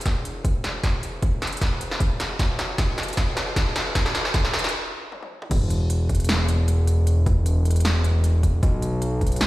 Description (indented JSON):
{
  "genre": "future bass",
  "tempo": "154 BPM",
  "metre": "4/4",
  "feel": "swing 54% on 16ths, half-time",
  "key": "unclear",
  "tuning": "A4 = 440 Hz",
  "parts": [
    { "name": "fat analog bass", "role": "bass", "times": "0.0-9.5 s", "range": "E1 to B1", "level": "-23 LUFS", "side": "equal", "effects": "sidechain pumping, high-pass filter" },
    { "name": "big-room dance drum kit", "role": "drums", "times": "0.0-9.5 s", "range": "crash cymbal, hi-hat, snare drum, toms", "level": "-26 LUFS", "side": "equal", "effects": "high-pass filter on snare, high-pass filter on hats, high-pass filter on toms, high-pass filter on cymbals, high-pass filter on room" },
    { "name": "electronic kick drum", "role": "drums", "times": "0.1-9.3 s", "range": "none", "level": "-23 LUFS", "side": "equal", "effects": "none" }
  ],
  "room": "light reverb",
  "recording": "played on a big sound system in a bare room, stone room reverb",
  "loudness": "-20 LUFS",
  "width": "side -17 dB against mid",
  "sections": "0.0-5.5 A section; 5.5-9.5 B section",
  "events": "build-up 0.0-5.5; drum fill 0.0-4.7, 5.1-5.5; stop 4.7-5.5; drop 5.5-9.5",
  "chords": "none"
}